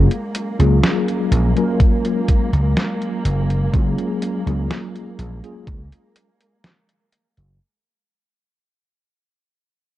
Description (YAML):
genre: vaporwave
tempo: 62 BPM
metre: 4/4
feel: straight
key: Gb major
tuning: A4 = 441 Hz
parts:
  - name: mellow tine electric piano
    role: accompaniment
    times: 0.0-5.8 s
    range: Gb3 to Bb4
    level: -22 LUFS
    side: left 2 dB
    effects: medium stereo tremolo, lush chorus, analog delay
  - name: dark chamber string section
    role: sustained chords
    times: 0.0-7.6 s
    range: Ab3 to Bb3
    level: -29 LUFS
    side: right 1 dB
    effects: none
  - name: vintage slap bass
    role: bass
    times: 0.0-7.6 s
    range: Gb1 to Db2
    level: -17 LUFS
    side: equal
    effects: tube saturation, low-pass filter
  - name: detuned 8-bit digital drum machine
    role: drums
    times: 0.1-7.6 s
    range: hi-hat, snare drum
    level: -23 LUFS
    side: equal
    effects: none
  - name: electronic kick drum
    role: drums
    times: 1.8-5.9 s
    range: none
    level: -16 LUFS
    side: equal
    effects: none
room: little or no reverb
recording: dark, warm production, cassette tape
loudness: -16 LUFS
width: side -14 dB against mid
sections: 0.0-7.6 A section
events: fade-out 0.0-7.6; filter sweep on slap bass 0.0-7.6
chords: 0.0 Gbmaj9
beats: 0.83 1.80 2.77 | 3.73 4.70 5.67 6.64